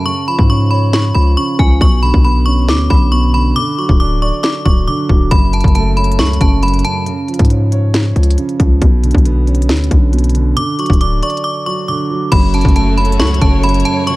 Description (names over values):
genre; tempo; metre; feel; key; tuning
hip hop, trap; 137 BPM; 4/4; half-time; F# harmonic minor; A4 = 440 Hz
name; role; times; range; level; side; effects
metallic FM bell; melody; 0.0-7.0, 10.6-14.2 s; G#5 to D6; -18 LUFS; left 1 dB; chorus
dark concert grand piano; accompaniment; 0.0-14.2 s; F#2 to D5; -18 LUFS; right 3 dB; none
hard-hitting 808-style bass; bass; 0.4-13.8 s; D1 to G#2; -13 LUFS; equal; none
trap drum kit; drums; 0.4-14.2 s; crash cymbal, hi-hat, kick drum, snare drum; -13 LUFS; equal; vintage 12-bit sampler grit
rich symphonic string section; sustained chords; 12.3-14.2 s; C#3 to C#5; -23 LUFS; left 2 dB; none
room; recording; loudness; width
digital ambience; none; -10 LUFS; side -19 dB against mid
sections
0.0-12.3 A section; 12.3-14.2 B section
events
break 0.0-5.3, 11.4-12.3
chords
0.1 C#; 1.8 Bmadd9; 3.6 D; 5.3 F#m; 7.1 C#; 8.8 Bmadd9; 10.6 D; 12.3 F#m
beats
| 0.06 0.49 0.93 1.37 | 1.81 2.25 2.69 3.12 | 3.56 4.00 4.44 4.88 | 5.31 5.75 6.19 6.63 | 7.07 7.50 7.94 8.38 | 8.82 9.25 9.69 10.13 | 10.57 11.01 11.44 11.88 | 12.32 12.76 13.20 13.63 | 14.07